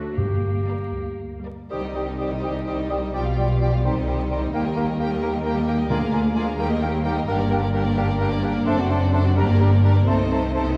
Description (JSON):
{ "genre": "quick classical-period movement for symphony orchestra", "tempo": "77-89 BPM (dotted quarters)", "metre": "6/8", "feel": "rubato", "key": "C minor, G minor from 7.3 s", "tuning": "A4 = 441 Hz", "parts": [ { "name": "rich studio violin section", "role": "melody", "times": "0.0-10.8 s", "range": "Bb4 to G5", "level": "-37 LUFS", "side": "equal", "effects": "none" }, { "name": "clear clarinet", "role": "second line", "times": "0.0-10.7 s", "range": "D4 to G4", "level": "-36 LUFS", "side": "equal", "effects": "none" }, { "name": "rich studio violin section", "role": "second line", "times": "0.0-10.8 s", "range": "Eb4 to C5", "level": "-36 LUFS", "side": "equal", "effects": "none" }, { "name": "rich chamber viola section", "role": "accompaniment", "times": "0.0-10.8 s", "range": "Eb3 to D4", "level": "-30 LUFS", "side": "equal", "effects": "none" }, { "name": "rich chamber cello section", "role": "bass", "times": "0.0-10.8 s", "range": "C2 to Bb3", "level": "-27 LUFS", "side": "equal", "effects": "none" }, { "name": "rich chamber double bass section", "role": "bass", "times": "0.2-10.8 s", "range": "F#1 to Eb2", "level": "-29 LUFS", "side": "equal", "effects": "none" }, { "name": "timpani", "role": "percussion", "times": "0.2-0.9, 5.9-6.5 s", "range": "G2 to D3", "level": "-31 LUFS", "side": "equal", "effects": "none" }, { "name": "mellow cor anglais", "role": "second line", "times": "1.7-10.7 s", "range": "Bb4 to Eb5", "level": "-38 LUFS", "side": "equal", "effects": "none" }, { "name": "small flute group", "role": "second line", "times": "1.7-10.6 s", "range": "G5 to Bb5", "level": "-37 LUFS", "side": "equal", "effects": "none" }, { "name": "clear bassoon", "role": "accompaniment", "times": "1.7-10.7 s", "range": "G3 to Bb3", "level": "-33 LUFS", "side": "equal", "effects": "none" }, { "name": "mellow French horn section", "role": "sustained chords", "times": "1.7-10.8 s", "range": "G3 to Ab4", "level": "-32 LUFS", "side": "equal", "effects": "none" } ], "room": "wet scoring stage reverb, RT60 1.5 s", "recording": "heard from further back in the room, vinyl crackle", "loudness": "-22 LUFS", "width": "mono", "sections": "0.0-1.7 A section; 1.7-10.8 B section", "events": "none", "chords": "0.2 Gm; 1.7 Cm; 3.1 G7/B; 3.8 Cm; 4.5 Eb; 5.9 Bb7/D; 6.6 Eb; 7.3 Gm; 8.7 D7/F#; 9.4 Gm; 10.1 Adim/C" }